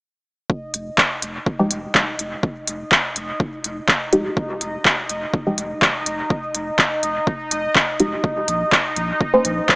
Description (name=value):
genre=dub techno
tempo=124 BPM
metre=4/4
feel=swing 53% on 16ths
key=F minor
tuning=A4 = 435 Hz
part: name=electronic kick drum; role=drums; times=0.5-9.8 s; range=none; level=-22 LUFS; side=equal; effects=overdrive
part: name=bubbling stepped-filter texture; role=texture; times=0.5-9.8 s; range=Eb4 to Eb5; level=-26 LUFS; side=equal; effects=chorus, built-in reverb, sidechain pumping
part: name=warm sub bass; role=bass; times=0.7-9.6 s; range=F1 to Bb1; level=-32 LUFS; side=equal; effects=sidechain pumping
part: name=deep house drum kit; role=drums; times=0.7-9.8 s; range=handclaps, hi-hat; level=-18 LUFS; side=equal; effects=dub echo
part: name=filtered dub chord stab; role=stabs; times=1.6-9.5 s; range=F3 to C5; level=-20 LUFS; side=equal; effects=chorus, phaser, vintage 12-bit sampler grit, sidechain pumping, dub echo
room=moderate lush hall reverb, RT60 2.3 s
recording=small speaker sound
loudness=-18 LUFS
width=side -28 dB against mid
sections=0.5-9.8 A section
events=none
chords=0.5 F7(no3); 8.2 N.C.